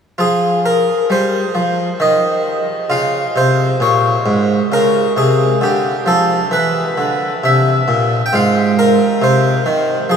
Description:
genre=classical, baroque-style suite movement for harpsichord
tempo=67 BPM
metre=3/4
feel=rubato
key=F minor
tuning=A4 = 439 Hz
part: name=harpsichord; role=solo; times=0.2-10.2 s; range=Ab2 to G5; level=-12 LUFS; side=equal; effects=none
room=wet huge ambient reverb, RT60 7.5 s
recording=in a vast, echoing space, studio ambience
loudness=-12 LUFS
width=side -7 dB against mid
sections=0.2-10.2 A section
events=none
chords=0.2 F5; 2.0 N.C.; 2.9 Db; 5.6 Dm69; 7.4 C; 8.3 Fm/Ab

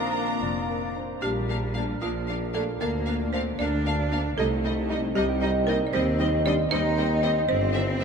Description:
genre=cinematic, playful, whimsical film cue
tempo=77 BPM (dotted quarters)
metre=6/8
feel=straight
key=Bb major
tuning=A4 = 440 Hz
part: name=folk marimba with hard mallets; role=melody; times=0.0-8.0 s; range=F4 to Eb5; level=-32 LUFS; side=right 3 dB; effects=none
part: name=bright oboe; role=second line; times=0.0-0.9 s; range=D5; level=-40 LUFS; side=right 3 dB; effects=none
part: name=dark clarinet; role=second line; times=0.0-1.2 s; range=Bb4 to D5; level=-42 LUFS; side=equal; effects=none
part: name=hollow concert flute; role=second line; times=0.0-1.0 s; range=F5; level=-40 LUFS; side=left 4 dB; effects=none
part: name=rich studio violin section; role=second line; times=0.0-8.0 s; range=C4 to Bb5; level=-34 LUFS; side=left 1 dB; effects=none
part: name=mellow bassoon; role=accompaniment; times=0.0-1.0 s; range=F3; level=-44 LUFS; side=left 5 dB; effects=none
part: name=rich chamber viola section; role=accompaniment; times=0.0-8.0 s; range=G3 to D4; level=-36 LUFS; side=left 1 dB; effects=none
part: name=mellow French horn section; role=sustained chords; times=0.0-8.0 s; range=Bb3 to E4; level=-33 LUFS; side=left 1 dB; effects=none
part: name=concert harp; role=arpeggios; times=0.0-8.0 s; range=G2 to C6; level=-30 LUFS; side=right 2 dB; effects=none
part: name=clear chamber cello section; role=bass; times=0.0-8.0 s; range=F2 to Eb4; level=-32 LUFS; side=equal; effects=none
part: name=rich studio double bass section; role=bass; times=0.0-8.0 s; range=F1 to Eb2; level=-31 LUFS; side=equal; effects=none
part: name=rich symphonic violin section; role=melody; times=0.1-8.0 s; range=D4 to F5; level=-36 LUFS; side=left 2 dB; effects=none
part: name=warm tuba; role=bass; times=1.2-8.0 s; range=G1 to Eb2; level=-32 LUFS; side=equal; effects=none
room=wet cathedral reverb, RT60 5.2 s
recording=in a vast, echoing space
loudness=-23 LUFS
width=side -6 dB against mid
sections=0.0-1.2 A section; 1.2-8.0 B section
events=none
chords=0.0 Bb; 2.8 Bb/D; 4.4 Cm; 5.9 Cm/Eb; 7.5 C7/G

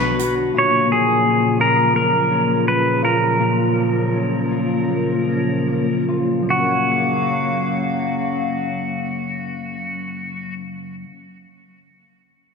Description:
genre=dream pop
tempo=73-86 BPM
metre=4/4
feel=straight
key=F# major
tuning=A4 = 440 Hz
part: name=pedal steel guitar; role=melody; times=0.0-10.5 s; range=F#4 to C#5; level=-20 LUFS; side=right 1 dB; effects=ping-pong delay
part: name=warbly tape-like pad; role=sustained chords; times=0.0-10.5 s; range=A#2 to E#5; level=-22 LUFS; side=right 1 dB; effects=chorus, built-in reverb
part: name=mellow electric guitar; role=arpeggios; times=0.0-11.3 s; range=F#2 to F#4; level=-23 LUFS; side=left 5 dB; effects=ensemble chorus, ping-pong delay
part: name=vintage muted picked electric bass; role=bass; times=0.0-0.5 s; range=B1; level=-29 LUFS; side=equal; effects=none
part: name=synth chime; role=texture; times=0.0-0.9 s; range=B5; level=-41 LUFS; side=right 1 dB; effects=none
room=wet lush hall reverb, RT60 2.2 s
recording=bright 1980s-style digital production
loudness=-17 LUFS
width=side -5 dB against mid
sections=0.0-6.5 A section; 6.5-9.8 B section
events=slowing down 0.5-6.5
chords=0.0 Bm; 0.5 F#maj7/A#

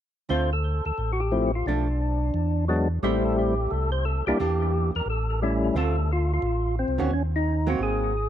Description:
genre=jazz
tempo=176 BPM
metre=4/4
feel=swing 63% on 8ths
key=D minor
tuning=A4 = 442 Hz
part: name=percussive tonewheel organ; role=melody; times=0.3-8.3 s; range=F3 to C5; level=-26 LUFS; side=left 2 dB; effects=slow rotary speaker, overdrive, tape echo
part: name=archtop guitar, miked and amplified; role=accompaniment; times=0.3-8.1 s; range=D3 to G4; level=-30 LUFS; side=right 6 dB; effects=none
part: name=mellow tonewheel organ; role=bass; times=0.3-8.3 s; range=G#1 to E2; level=-26 LUFS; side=equal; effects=slow rotary speaker
room=little or no reverb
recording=dry, close 1970s-style studio recording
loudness=-22 LUFS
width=side -10 dB against mid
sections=0.3-5.7 A section; 5.7-8.3 B section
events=none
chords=0.3 Dm7; 1.7 Bm7b5; 2.3 E7; 3.0 Am7; 4.4 Em7b5; 5.1 A7; 5.7 Dm7; 7.1 Ebm

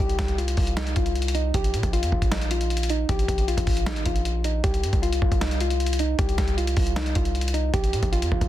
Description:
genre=hip hop, trap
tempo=155 BPM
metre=4/4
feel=half-time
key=C minor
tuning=A4 = 438 Hz
part: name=soft electric-piano-like synth keys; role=melody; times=0.0-8.5 s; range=Eb4 to G4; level=-28 LUFS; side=left 1 dB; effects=chorus, low-pass filter, tape echo
part: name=hard-hitting 808-style bass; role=bass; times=0.0-8.5 s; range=Ab1 to Bb2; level=-25 LUFS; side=equal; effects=none
part: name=dusty soul sampler-style drum kit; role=drums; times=0.1-8.5 s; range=hi-hat, kick drum, snare drum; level=-25 LUFS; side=equal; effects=none
room=digital ambience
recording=dense, heavily limited modern master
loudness=-21 LUFS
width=side -13 dB against mid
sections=0.0-8.5 A section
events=none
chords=0.0 C5; 1.5 Bb5; 4.6 C5; 7.7 Bb5

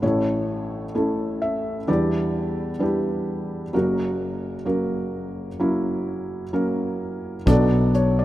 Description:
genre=acoustic folk-pop ballad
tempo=65 BPM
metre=4/4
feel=straight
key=unclear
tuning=A4 = 440 Hz
part: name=felt-muted upright piano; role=melody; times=0.0-8.2 s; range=F#1 to E5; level=-22 LUFS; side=equal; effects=none
part: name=fingered electric bass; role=bass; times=7.5-8.2 s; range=B1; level=-20 LUFS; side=equal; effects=none
part: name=soft brush drum kit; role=drums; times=7.5-8.2 s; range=hi-hat, kick drum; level=-24 LUFS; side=equal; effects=none
room=light reverb, small room ambience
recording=rough home demo mix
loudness=-21 LUFS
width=side -14 dB against mid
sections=0.0-7.5 A section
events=none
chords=0.0 A; 1.9 Em7; 3.7 F#; 7.5 Bm7

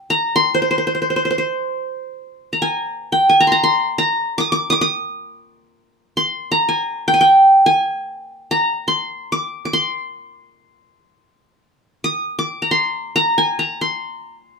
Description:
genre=Turkish makam ensemble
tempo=free time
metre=none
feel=none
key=C makam nihavent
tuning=A4 = 437 Hz
part: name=qanun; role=solo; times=0.1-14.6 s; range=C5 to Eb6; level=-15 LUFS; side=equal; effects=none
room=moderate studio reverb, RT60 0.6 s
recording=minimal, uncompressed stereo recording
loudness=-15 LUFS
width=side -5 dB against mid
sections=0.0-2.3 A section; 2.3-14.6 A section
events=none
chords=none

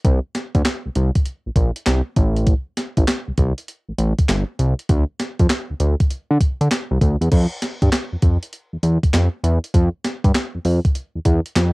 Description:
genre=R&B, new jack swing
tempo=99 BPM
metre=4/4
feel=swing 66% on 16ths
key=unclear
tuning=A4 = 441 Hz
part: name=fat analog bass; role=bass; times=0.0-11.7 s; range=G1 to D3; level=-17 LUFS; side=equal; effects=none
part: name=clean 12-bit digital drum machine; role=drums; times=0.0-11.7 s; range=crash cymbal, handclaps, hi-hat, kick drum, snare drum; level=-18 LUFS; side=equal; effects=overdrive, cassette tape
room=little or no reverb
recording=home recording on cassette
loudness=-17 LUFS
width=side -26 dB against mid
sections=0.0-7.3 A section; 7.3-11.7 B section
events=none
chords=none

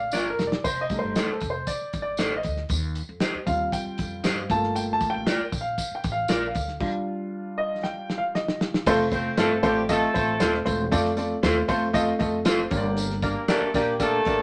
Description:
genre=uptempo 1960s-style soul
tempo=117 BPM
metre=4/4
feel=straight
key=F mixolydian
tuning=A4 = 440 Hz
part: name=warm baby grand piano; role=accompaniment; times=0.0-14.4 s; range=G3 to A5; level=-28 LUFS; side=equal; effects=none
part: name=upright bass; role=bass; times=0.0-14.4 s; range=Eb1 to G2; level=-35 LUFS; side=equal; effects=none
part: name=electric guitar through a small old amp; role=stabs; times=0.1-13.6 s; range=D4 to D5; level=-29 LUFS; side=equal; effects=none
part: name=warm soul drum kit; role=drums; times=0.1-14.4 s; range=crash cymbal, hi-hat, kick drum, snare drum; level=-31 LUFS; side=equal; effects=none
part: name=tambourine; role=percussion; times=0.1-14.4 s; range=none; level=-40 LUFS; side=equal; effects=none
part: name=dark horn section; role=second line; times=9.1-14.4 s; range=G3 to C5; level=-29 LUFS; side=equal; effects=none
room=wet studio reverb, RT60 0.5 s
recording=none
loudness=-25 LUFS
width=mono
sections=0.0-8.9 A section; 8.9-14.4 B section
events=grand piano solo 0.0-8.9; drum fill 0.1-0.6, 7.8-8.9; stop 6.8-8.9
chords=0.0 Gm7; 0.6 F7; 2.7 Eb6; 4.5 Gm7; 6.8 Ebmaj9/G; 8.9 F; 12.7 Gm

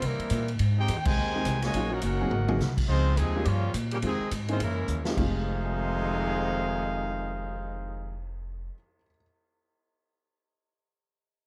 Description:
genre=jazz, big band swing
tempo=210 BPM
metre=4/4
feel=swing 61% on 8ths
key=F minor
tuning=A4 = 440 Hz
part: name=clear trumpet section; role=melody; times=0.0-8.2 s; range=G3 to Ab5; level=-35 LUFS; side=equal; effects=none
part: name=bright trombone section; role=second line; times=0.0-8.2 s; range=F2 to G4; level=-36 LUFS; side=equal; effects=none
part: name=warm baby grand piano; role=accompaniment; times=0.0-9.2 s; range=F2 to C7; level=-36 LUFS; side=equal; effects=none
part: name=upright bass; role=bass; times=0.0-8.7 s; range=F1 to C3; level=-32 LUFS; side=equal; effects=none
part: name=swinging big-band drum kit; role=drums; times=0.0-7.4 s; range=crash cymbal, cymbal swell, hi-hat, kick drum, ride cymbal, snare drum, toms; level=-36 LUFS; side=equal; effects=none
room=little or no reverb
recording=none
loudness=-28 LUFS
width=mono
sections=0.0-2.9 A section; 2.9-5.2 B section; 5.2-7.5 C section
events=band accent 1.0; drum fill 2.3, 4.9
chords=0.0 C7; 0.6 Fm9 (rootless); 1.7 Ebm7; 2.3 Ab7; 2.9 Dbmaj9#11; 3.5 Gm7b5; 4.0 Fm7; 4.6 Gb13; 5.2 Fm7

